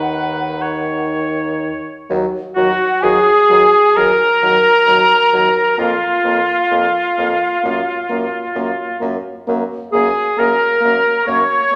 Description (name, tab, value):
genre	classical, slow romantic movement for wind quintet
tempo	59-68 BPM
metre	4/4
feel	rubato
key	Eb minor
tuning	A4 = 442 Hz
part	mellow hollow silver concert flute	melody	0.0-11.8 s	F5 to Db6	-21 LUFS	equal	none
part	bright oboe	second line	0.0-11.8 s	F4 to Db5	-23 LUFS	equal	none
part	warm French horn	accompaniment	0.0-11.8 s	Eb3 to Bb3	-26 LUFS	equal	none
part	warm clarinet	accompaniment	0.0-11.8 s	Eb4 to Db5	-18 LUFS	equal	none
part	clear bassoon	bass	0.0-11.4 s	Eb2 to Gb2	-27 LUFS	equal	none
room	wet recital hall reverb, RT60 1.3 s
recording	none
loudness	-15 LUFS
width	mono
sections	0.0-2.1 A section; 2.1-11.8 A section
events	none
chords	0.0 Ebm; 5.8 Bb5/F; 7.6 Gb